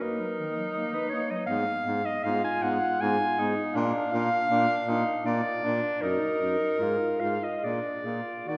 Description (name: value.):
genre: classical, lyrical piece for single-reed quartet.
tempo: 79 BPM.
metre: 3/4.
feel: rubato.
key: unclear.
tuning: A4 = 441 Hz.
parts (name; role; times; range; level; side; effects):
clear clarinet; melody; 0.0-8.6 s; Bb4 to Ab5; -31 LUFS; equal; none.
mellow clarinet; second line; 0.0-8.6 s; Eb3 to Ab4; -39 LUFS; equal; none.
warm tenor saxophone; accompaniment; 0.0-8.6 s; D4 to Gb4; -34 LUFS; equal; none.
dark baritone saxophone; bass; 1.5-8.6 s; Gb2 to Eb3; -34 LUFS; equal; none.
room: wet concert hall reverb, RT60 1.9 s.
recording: heard from further back in the room.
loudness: -28 LUFS.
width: mono.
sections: 0.0-8.6 A section.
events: none.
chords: 0.0 Ebm; 1.5 Fdim/Ab; 3.8 Bb; 6.0 Ebm/Gb; 6.8 Fmadd11/Ab; 7.6 Bb7.